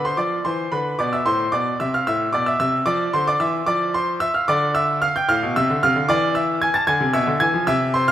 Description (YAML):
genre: classical-period piano sonatina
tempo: 75 BPM (dotted quarters)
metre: 6/8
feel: straight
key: unclear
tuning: A4 = 441 Hz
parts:
  - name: bright grand piano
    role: solo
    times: 0.0-8.1 s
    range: A2 to A6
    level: -18 LUFS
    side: equal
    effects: none
room: moderate church reverb, RT60 2.4 s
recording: recorded in a church or concert hall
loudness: -18 LUFS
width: side -11 dB against mid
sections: 0.0-8.1 A section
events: none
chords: 0.0 E5; 1.3 Am; 2.9 F5; 4.5 Dm; 6.1 E; 6.9 E7